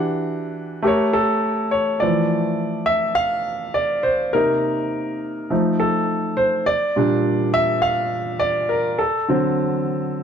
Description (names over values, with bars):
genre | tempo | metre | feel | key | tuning
soul | 103 BPM | 4/4 | swing 54% on 16ths | unclear | A4 = 440 Hz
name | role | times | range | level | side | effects
warm baby grand piano | solo | 0.0-10.2 s | Bb2 to F#5 | -18 LUFS | equal | none
room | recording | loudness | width
moderate echo chamber reverb, RT60 2.3 s | dark, warm production | -18 LUFS | side -7 dB against mid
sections
0.0-2.0 A section; 2.0-10.2 B section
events
grand piano solo 2.0-10.2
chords
0.0 Em9; 0.9 A7b9; 2.0 Fmaj7; 4.3 Cm7; 5.5 F7; 6.7 Bb6; 9.0 D7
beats
0.27 0.85 1.44 | 2.02 2.60 3.18 3.76 | 4.34 4.92 5.50 6.09 | 6.67 7.25 7.83 8.41 | 8.99 9.57 10.15